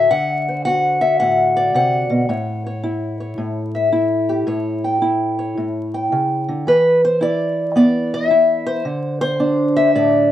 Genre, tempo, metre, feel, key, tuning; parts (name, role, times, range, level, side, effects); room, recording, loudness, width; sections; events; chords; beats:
acoustic country blues, solo or duo; 110 BPM; 4/4; swing 66% on 8ths; A mixolydian; A4 = 438 Hz
fingerpicked old ladder-braced acoustic guitar; solo; 0.0-10.3 s; A2 to A5; -15 LUFS; left 1 dB
light reverb; dark, warm production, vinyl crackle; -15 LUFS; side -12 dB against mid
0.0-10.3 A section
0.0 D7; 2.3 A7; 6.7 E5; 8.9 D7(no3)
| 0.11 0.66 1.20 1.75 | 2.29 2.84 3.38 3.93 | 4.48 5.02 5.57 6.12 | 6.66 7.21 7.76 8.31 | 8.85 9.40 9.95